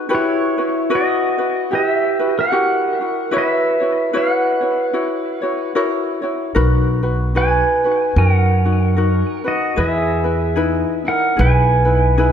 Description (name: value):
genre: Hawaiian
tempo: 74 BPM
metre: 4/4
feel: swing 60% on 8ths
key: unclear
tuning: A4 = 440 Hz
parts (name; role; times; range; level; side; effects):
- ukulele; accompaniment; 0.0-12.3 s; D#4 to C#5; -20 LUFS; left 2 dB; none
- pedal steel guitar; melody; 0.1-12.3 s; E4 to G#5; -18 LUFS; right 1 dB; ping-pong delay
- upright bass; bass; 6.6-12.3 s; B1 to F#2; -16 LUFS; equal; none
room: moderate concert hall reverb, RT60 2.2 s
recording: none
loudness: -15 LUFS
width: side -8 dB against mid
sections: 0.0-12.3 A section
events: none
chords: 0.1 Emadd9; 3.3 F#7sus4; 4.9 F#7; 6.6 Bmaj7; 9.8 Emaj7